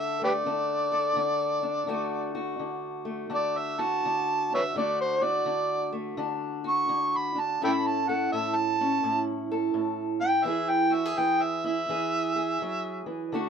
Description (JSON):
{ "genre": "acoustic country blues, solo or duo", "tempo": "84 BPM", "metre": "4/4", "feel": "swing 64% on 8ths", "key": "unclear", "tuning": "A4 = 440 Hz", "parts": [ { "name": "overdriven harmonica", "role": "melody", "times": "0.0-13.0 s", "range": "G4 to C#6", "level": "-26 LUFS", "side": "right 1 dB", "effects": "none" }, { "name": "fingerpicked steel-string acoustic guitar", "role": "accompaniment", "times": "0.0-13.5 s", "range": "A2 to A4", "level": "-29 LUFS", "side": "equal", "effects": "none" } ], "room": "light reverb", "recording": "minimal, uncompressed stereo recording", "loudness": "-25 LUFS", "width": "side -7 dB against mid", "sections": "0.0-13.5 A section", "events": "none", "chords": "0.0 D; 7.6 A; 10.5 E" }